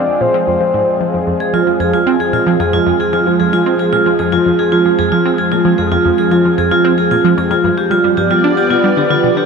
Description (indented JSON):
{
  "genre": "ambient, sequencer-driven space music",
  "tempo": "113 BPM",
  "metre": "4/4",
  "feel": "straight",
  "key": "F dorian",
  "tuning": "A4 = 441 Hz",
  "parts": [
    { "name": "soft octave-layered synth lead", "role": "melody", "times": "0.0-1.2 s", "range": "C5 to D5", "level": "-18 LUFS", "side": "left 2 dB", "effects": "chorus, tape echo" },
    { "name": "lush unison pad", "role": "sustained chords", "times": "0.0-9.5 s", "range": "F3 to D5", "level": "-17 LUFS", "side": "left 2 dB", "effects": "chorus, phaser" },
    { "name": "tight sequenced synth", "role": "riff", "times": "0.0-9.5 s", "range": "F2 to D4", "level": "-17 LUFS", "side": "right 1 dB", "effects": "chorus, phaser, vintage 12-bit sampler grit, tape echo" },
    { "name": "vibraphone with medium hard mallets", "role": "arpeggios", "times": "1.4-9.5 s", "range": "F4 to Ab4", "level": "-13 LUFS", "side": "right 2 dB", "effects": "auto-pan, tape echo" }
  ],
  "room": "wet huge ambient reverb, RT60 7.9 s",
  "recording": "none",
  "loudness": "-11 LUFS",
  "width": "side -5 dB against mid",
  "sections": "0.0-9.5 A section",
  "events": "none",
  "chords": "0.0 Fm; 7.6 G7"
}